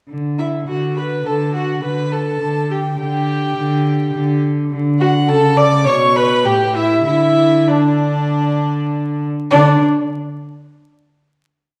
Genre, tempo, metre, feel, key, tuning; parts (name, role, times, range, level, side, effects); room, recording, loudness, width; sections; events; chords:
quick classical-period movement for string quartet; 102 BPM; 4/4; straight; D major; A4 = 441 Hz
rich cello; bass; 0.1-9.9 s; A2 to D3; -20 LUFS; equal
warm violin; melody; 0.4-9.9 s; D5 to D6; -23 LUFS; equal
rich violin; second line; 0.4-9.9 s; D4 to D5; -23 LUFS; equal
rich viola; accompaniment; 0.4-9.9 s; D4 to D5; -23 LUFS; equal
wet recital hall reverb, RT60 1.4 s; heard from further back in the room, vinyl crackle; -16 LUFS; mono
0.1-9.5 A section; 9.5-11.8 final note
0.1 Dsus4; 4.7 Dmaj7; 5.9 Bsus2; 6.5 A5; 7.1 Dsus2; 9.5 N.C.